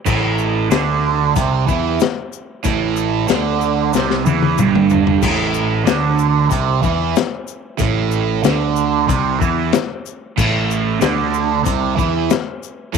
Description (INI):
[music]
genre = psychedelic rock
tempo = 93 BPM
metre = 4/4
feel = straight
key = A minor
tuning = A4 = 440 Hz
[part]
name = cranked stack guitar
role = riff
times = 0.1-13.0 s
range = G2 to E3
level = -17 LUFS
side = right 10 dB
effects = overdrive, phaser
[part]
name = fuzz picked electric bass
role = bass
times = 0.1-13.0 s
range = G1 to E2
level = -21 LUFS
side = left 3 dB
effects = overdrive
[part]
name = crunchy breakbeat drum kit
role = drums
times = 0.1-13.0 s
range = crash cymbal, hi-hat, kick drum, snare drum, toms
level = -19 LUFS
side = left 7 dB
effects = none
[part]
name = egg shaker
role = percussion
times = 0.1-13.0 s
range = none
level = -33 LUFS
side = left 20 dB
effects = none
[sound]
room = moderate spring reverb, RT60 2.0 s, small room reverb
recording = 1960s-style stereo with parts hard left and right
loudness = -14 LUFS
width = side -6 dB against mid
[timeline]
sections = 0.0-13.0 A section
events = drum fill 3.9-5.2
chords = 0.0 Am